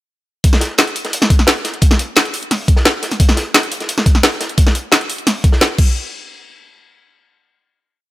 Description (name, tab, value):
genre	drum and bass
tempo	174 BPM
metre	4/4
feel	straight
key	none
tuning	none
part	crunchy breakbeat drum kit	drums	0.4-5.7 s	hi-hat, snare drum	-21 LUFS	equal	high-pass filter on hats, high-pass filter on snare, high-pass filter on room
part	drum and bass drum kit	drums	0.4-5.9 s	crash cymbal, hi-hat, snare drum	-15 LUFS	equal	overdrive
part	electronic kick drum	drums	0.4-5.9 s	none	-11 LUFS	equal	overdrive
room	little or no reverb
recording	none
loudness	-12 LUFS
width	side -17 dB against mid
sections	0.4-6.0 drop; 6.0-8.1 final hit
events	drop 0.4-6.0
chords	none